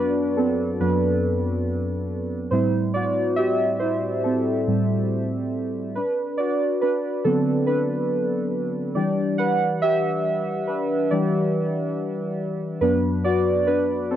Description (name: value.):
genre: hip hop.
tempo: 70 BPM.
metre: 4/4.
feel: swing 63% on 16ths.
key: D mixolydian.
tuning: A4 = 435 Hz.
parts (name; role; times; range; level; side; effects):
warbly lo-fi synth keys; solo; 0.0-14.2 s; F#2 to F#5; -20 LUFS; equal; chorus, cassette tape.
room: moderate booth ambience, RT60 0.2 s.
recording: none.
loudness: -20 LUFS.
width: side -10 dB against mid.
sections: 0.0-14.2 A section.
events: synth keys solo 0.0-14.2.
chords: 0.0 D6/F#; 2.5 Am7; 5.9 D6; 8.9 Em7; 12.8 D6/F#.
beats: 0.81 1.66 | 2.52 3.38 4.23 5.09 | 5.95 6.80 7.66 8.52 | 9.38 10.23 11.09 11.95 | 12.80 13.66.